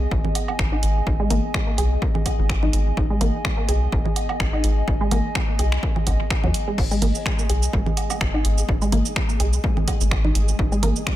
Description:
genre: minimal techno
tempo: 126 BPM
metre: 4/4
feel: swing 55% on 16ths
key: G# minor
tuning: A4 = 441 Hz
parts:
  - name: rubbery square bass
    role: bass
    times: 0.0-10.9 s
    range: G#1 to D#2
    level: -22 LUFS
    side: equal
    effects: sidechain pumping
  - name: warbly tape-like pad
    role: texture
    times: 0.0-11.2 s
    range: B3 to G#5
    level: -30 LUFS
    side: equal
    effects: chorus, built-in reverb, sidechain pumping
  - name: electronic kick drum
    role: drums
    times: 0.1-11.2 s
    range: none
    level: -23 LUFS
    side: equal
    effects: none
  - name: congas and woodblock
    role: percussion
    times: 0.2-10.9 s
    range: none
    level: -31 LUFS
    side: right 6 dB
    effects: tape echo
  - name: punchy analog drum machine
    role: drums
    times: 0.4-11.2 s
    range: crash cymbal, finger snaps, hi-hat, shaker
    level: -28 LUFS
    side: right 1 dB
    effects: analog delay
  - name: resonant blip pluck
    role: riff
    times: 0.7-10.9 s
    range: F#3 to G#4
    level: -28 LUFS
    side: equal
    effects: chorus, sidechain pumping, dub echo
  - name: flickering grainy texture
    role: texture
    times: 7.1-11.2 s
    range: G#3 to G#4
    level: -36 LUFS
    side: left 2 dB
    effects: built-in reverb, sidechain pumping
room: little or no reverb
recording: echo-heavy mix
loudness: -19 LUFS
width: side -14 dB against mid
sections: 0.0-11.2 A section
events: none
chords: 0.0 G#m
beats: 0.12 0.59 | 1.07 1.54 2.02 2.50 | 2.97 3.45 3.92 4.40 | 4.88 5.35 5.83 6.30 | 6.78 7.26 7.73 8.21 | 8.69 9.16 9.64 10.12 | 10.59 11.07

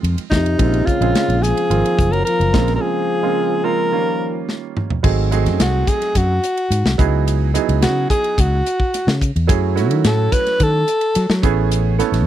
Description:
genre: electric jazz fusion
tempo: 108 BPM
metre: 4/4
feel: straight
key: Bb minor, C# minor from 5.0 s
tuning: A4 = 440 Hz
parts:
  - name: clear grand piano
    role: accompaniment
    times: 0.0-12.3 s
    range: Db3 to A4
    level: -22 LUFS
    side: right 13 dB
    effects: none
  - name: fretless electric bass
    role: bass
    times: 0.0-12.3 s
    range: Gb1 to F#3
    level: -18 LUFS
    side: left 1 dB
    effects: none
  - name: modern studio drum kit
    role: drums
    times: 0.0-12.3 s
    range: crash cymbal, hi-hat, kick drum, ride cymbal, snare drum, toms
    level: -19 LUFS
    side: left 1 dB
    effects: none
  - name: clear alto saxophone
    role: melody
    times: 0.3-11.4 s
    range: Eb4 to B4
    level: -19 LUFS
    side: equal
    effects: slapback echo
  - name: breathy trombone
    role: second line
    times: 0.3-4.5 s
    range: C3 to Gb3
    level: -23 LUFS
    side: left 9 dB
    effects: none
room: light reverb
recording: dry, close 1970s-style studio recording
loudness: -15 LUFS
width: side -11 dB against mid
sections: 0.0-5.0 A section; 5.0-12.3 B section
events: break 2.8-5.0; drum fill 4.5-5.0; alto saxophone solo 5.0-12.3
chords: 0.0 Fm7; 0.6 Bbm9; 1.7 Ab13; 2.5 Bbm9; 3.9 Eb7; 5.0 G#7b9; 7.0 C#m11; 9.5 F#m7; 11.4 Amaj7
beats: 0.04 | 0.59 1.15 1.71 2.26 | 2.82 3.38 3.93 4.49 | 5.04 5.60 6.16 6.71 | 7.27 7.82 8.38 8.94 | 9.49 10.05 10.60 11.16 | 11.71 12.27

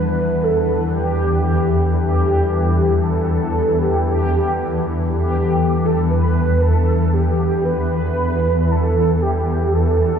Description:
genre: dark ambient drone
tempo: 58 BPM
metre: 4/4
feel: straight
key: E minor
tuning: A4 = 441 Hz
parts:
  - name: mellow horn-like synth lead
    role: melody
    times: 0.0-10.2 s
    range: G4 to B4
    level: -20 LUFS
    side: right 1 dB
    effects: ensemble chorus, tape echo
  - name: deep dark ambient pad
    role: sustained chords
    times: 0.0-10.2 s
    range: E3 to B4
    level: -27 LUFS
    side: right 1 dB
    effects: chorus, built-in reverb
  - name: swarming drone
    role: drone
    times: 0.0-10.2 s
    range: E2 to E3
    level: -17 LUFS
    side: equal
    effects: built-in reverb
  - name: bronze singing bowl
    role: texture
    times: 0.0-10.2 s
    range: G3 to F#5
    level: -36 LUFS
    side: right 2 dB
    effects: none
room: wet lush hall reverb, RT60 2.9 s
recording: dreamy mix soaked in reverb, cassette tape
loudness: -15 LUFS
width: side -7 dB against mid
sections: 0.0-10.2 A section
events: fade-out on ambient pad 0.0-10.2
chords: 0.0 Emadd9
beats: | 0.98 2.01 3.05 4.08 | 5.12 6.15 7.18 8.22 | 9.25

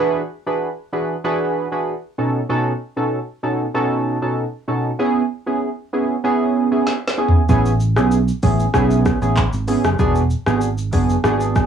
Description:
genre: afrobeats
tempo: 96 BPM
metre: 4/4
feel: straight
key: A major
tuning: A4 = 440 Hz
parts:
  - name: warm analog keys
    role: accompaniment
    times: 0.0-11.7 s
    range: B2 to B4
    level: -18 LUFS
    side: right 2 dB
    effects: chorus, cassette tape
  - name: afro-pop drum kit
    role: drums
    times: 6.9-11.7 s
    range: handclaps, hi-hat, kick drum, rim click, shaker, snare drum, toms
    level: -19 LUFS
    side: equal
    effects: cassette tape
  - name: fingered electric bass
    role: bass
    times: 7.5-11.6 s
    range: E1 to B1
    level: -18 LUFS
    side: right 1 dB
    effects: none
room: light reverb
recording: home recording on cassette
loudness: -17 LUFS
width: side -8 dB against mid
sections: 0.0-11.7 A section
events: drum fill 6.9-7.5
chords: 0.0 E9; 2.2 B7; 5.0 C#m7; 7.5 Amaj7; 10.0 E9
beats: 0.62 1.24 1.87 | 2.49 3.12 3.74 4.37 | 4.99 5.62 6.24 6.87 | 7.49 8.12 8.74 9.37 | 9.99 10.62 11.24

